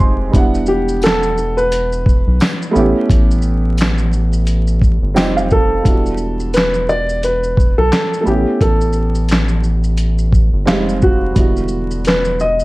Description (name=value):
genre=lo-fi hip hop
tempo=87 BPM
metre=4/4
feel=swing 58% on 16ths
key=E dorian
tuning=A4 = 440 Hz
part: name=warm upright piano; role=accompaniment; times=0.0-12.6 s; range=D3 to C6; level=-20 LUFS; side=right 2 dB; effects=plate reverb
part: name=round analog bass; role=bass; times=0.0-12.6 s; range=E1 to B1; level=-17 LUFS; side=equal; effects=none
part: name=dusty soul sampler-style drum kit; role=drums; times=0.0-12.6 s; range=handclaps, hi-hat, kick drum, shaker, snare drum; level=-15 LUFS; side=equal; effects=none
part: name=dark upright piano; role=melody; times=0.7-12.6 s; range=F#4 to D#5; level=-17 LUFS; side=equal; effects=plate reverb
part: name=tambourine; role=percussion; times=1.0-5.3 s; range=none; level=-38 LUFS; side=left 4 dB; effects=none
room=light reverb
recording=vinyl crackle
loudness=-12 LUFS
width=side -20 dB against mid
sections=0.0-5.9 A section; 5.9-12.6 B section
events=upright piano fill 0.0-0.3, 4.8-5.9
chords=0.3 Em9; 2.7 A7; 5.2 Fsus2; 5.9 Em9; 8.3 A7; 10.7 Fm9; 11.4 Em9